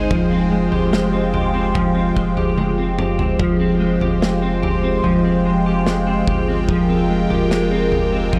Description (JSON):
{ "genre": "dream pop", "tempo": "73 BPM", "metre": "4/4", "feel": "straight", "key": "F minor", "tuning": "A4 = 440 Hz", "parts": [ { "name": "phased analog pad", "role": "sustained chords", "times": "0.0-8.4 s", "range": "Ab3 to G5", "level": "-23 LUFS", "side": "equal", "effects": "phaser, chorus" }, { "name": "clean electric guitar", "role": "arpeggios", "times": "0.0-8.4 s", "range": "F3 to Ab4", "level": "-21 LUFS", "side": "equal", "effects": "ensemble chorus, analog delay" }, { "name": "round analog bass", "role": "bass", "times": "0.0-8.4 s", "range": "F1 to G1", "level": "-27 LUFS", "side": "equal", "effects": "none" }, { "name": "loose indie drum kit", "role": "drums", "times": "0.1-8.4 s", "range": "kick drum, snare drum, toms", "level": "-26 LUFS", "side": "equal", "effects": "none" } ], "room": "light reverb, small room reverb", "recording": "none", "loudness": "-18 LUFS", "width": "mono", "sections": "0.0-3.4 A section; 3.4-8.4 A section", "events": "drum fill 2.6-3.4", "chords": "0.1 Fmadd9" }